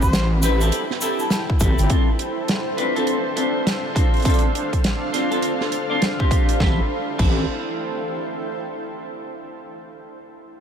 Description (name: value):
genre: glitch hop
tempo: 102 BPM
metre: 4/4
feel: swing 62% on 16ths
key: A minor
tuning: A4 = 440 Hz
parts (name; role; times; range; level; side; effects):
- mellow harmonica; melody; 0.0-1.9 s; G4 to C5; -32 LUFS; left 1 dB; analog delay
- wobble bass; bass; 0.0-1.9, 6.6-7.5 s; G1 to A1; -20 LUFS; equal; chorus
- electronic kick drum; drums; 0.0-7.3 s; none; -19 LUFS; equal; none
- egg shaker; percussion; 0.0-1.9 s; none; -32 LUFS; left 2 dB; none
- downlifter; sound effects; 0.0-1.9 s; none; barely audible; none; none
- granular cloud pad; texture; 0.0-8.9 s; D4 to G5; -27 LUFS; right 1 dB; built-in reverb, sidechain pumping
- modern studio drum kit; drums; 0.1-7.3 s; crash cymbal, hi-hat, snare drum; -27 LUFS; right 1 dB; none
- clean electric guitar; stabs; 0.4-7.4 s; C4 to D5; -25 LUFS; left 1 dB; lush chorus, sidechain pumping, low-pass filter, analog delay
room: moderate huge ambient reverb, RT60 8.8 s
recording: dreamy mix soaked in reverb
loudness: -18 LUFS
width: side -8 dB against mid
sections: 0.0-6.6 A section; 6.6-9.0 B section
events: none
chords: 0.0 Am7; 1.9 Dm7; 4.3 F6; 6.6 Am7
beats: 0.13 0.72 1.31 | 1.90 2.49 3.08 3.66 | 4.25 4.84 5.43 6.02 | 6.61 7.19 7.78 8.37